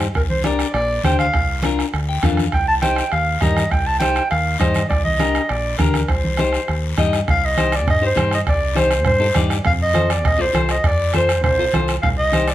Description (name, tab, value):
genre	latin, cumbia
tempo	202 BPM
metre	4/4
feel	straight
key	C dorian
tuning	A4 = 441 Hz
part	clean electric guitar	accompaniment	0.0-12.5 s	D4 to G5	-23 LUFS	left 6 dB	none
part	fingered electric bass	bass	0.0-12.5 s	Bb1 to G2	-22 LUFS	equal	none
part	bombo	percussion	0.0-12.5 s	none	-22 LUFS	right 2 dB	none
part	guiro	percussion	0.0-12.5 s	none	-32 LUFS	left 6 dB	none
part	congas	percussion	0.1-12.5 s	none	-25 LUFS	right 1 dB	none
part	breathy clarinet	melody	0.2-12.5 s	Bb4 to A5	-20 LUFS	right 1 dB	plate reverb
room	moderate studio reverb, RT60 0.6 s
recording	none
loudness	-16 LUFS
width	side -13 dB against mid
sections	0.0-7.3 A section; 7.3-12.5 B section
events	clean electric guitar fill 1.9-2.5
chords	0.2 Gm/C; 1.3 Bb/C; 2.5 Cm; 4.9 Gm/C; 6.1 Cm; 9.7 F; 12.0 Cm